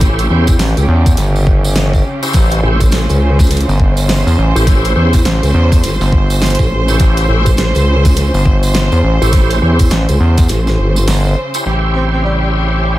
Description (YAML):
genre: glitch hop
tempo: 103 BPM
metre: 4/4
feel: swing 61% on 16ths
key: unclear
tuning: A4 = 438 Hz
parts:
  - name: clear studio string section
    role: sustained chords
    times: 0.0-13.0 s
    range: C#3 to B#4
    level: -20 LUFS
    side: right 1 dB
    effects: sidechain pumping
  - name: bright tonewheel organ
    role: stabs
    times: 0.0-13.0 s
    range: C#4 to B#4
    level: -22 LUFS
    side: equal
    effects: overdrive, chorus vibrato, slow rotary speaker, vintage 12-bit sampler grit, sidechain pumping, dub echo
  - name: vowel-sweep wobble bass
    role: bass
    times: 0.0-11.1 s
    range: G1 to E2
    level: -12 LUFS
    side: equal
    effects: chorus
  - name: dubstep drum kit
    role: drums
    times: 0.0-11.6 s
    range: hi-hat, snare drum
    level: -22 LUFS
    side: equal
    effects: low-pass filter on hats, small room ambience, low-pass filter on snare, dub echo
  - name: electronic kick drum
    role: drums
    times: 0.0-10.5 s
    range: none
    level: -12 LUFS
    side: equal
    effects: small room ambience
  - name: tambourine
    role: percussion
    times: 0.0-11.6 s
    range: none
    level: -26 LUFS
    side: right 5 dB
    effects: none
  - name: gritty driven synth bass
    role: bass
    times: 0.6-13.0 s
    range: G1 to E2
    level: -13 LUFS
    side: equal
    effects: tube saturation
  - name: breathy tenor saxophone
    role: melody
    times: 12.0-12.5 s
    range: G3 to B#3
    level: -21 LUFS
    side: equal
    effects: dub echo
room: small room ambience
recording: echo-heavy mix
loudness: -10 LUFS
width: side -15 dB against mid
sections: 0.0-11.7 A section; 11.7-13.0 B section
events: break 10.5-11.7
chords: 0.0 A7#9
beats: | 0.01 0.59 1.18 1.76 | 2.34 2.92 3.51 4.09 | 4.67 5.25 5.84 6.42 | 7.00 7.58 8.17 8.75 | 9.33 9.91 10.50 11.08 | 11.66 12.24 12.83